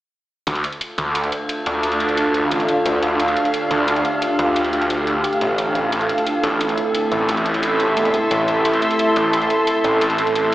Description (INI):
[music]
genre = dark technical drum and bass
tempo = 176 BPM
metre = 4/4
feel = straight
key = D minor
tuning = A4 = 440 Hz
[part]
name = metallic inharmonic drone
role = sustained chords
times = 0.8-10.5 s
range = C3 to A4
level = -22 LUFS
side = equal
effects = chorus, built-in reverb
[part]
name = snarling distorted saw bass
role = bass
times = 0.5-10.5 s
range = E1 to D2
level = -21 LUFS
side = equal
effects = distortion, overdrive
[part]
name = electronic hi-hat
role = drums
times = 0.5-10.5 s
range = none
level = -28 LUFS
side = equal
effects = none
[part]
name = granular cloud pad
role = texture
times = 1.3-10.5 s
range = D4 to C6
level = -20 LUFS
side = right 1 dB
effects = built-in reverb
[sound]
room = wet lush hall reverb, RT60 1.6 s, digital ambience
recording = played on a big sound system in a bare room, stone room reverb, AM radio sound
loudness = -16 LUFS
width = side -15 dB against mid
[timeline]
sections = 0.5-10.5 A section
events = none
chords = 0.5 Dm; 5.9 Am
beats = | 0.47 0.81 1.15 1.49 | 1.83 2.17 2.51 2.85 | 3.20 3.54 3.88 4.22 | 4.56 4.90 5.24 5.58 | 5.92 6.26 6.61 6.95 | 7.29 7.63 7.97 8.31 | 8.65 8.99 9.33 9.67 | 10.01 10.36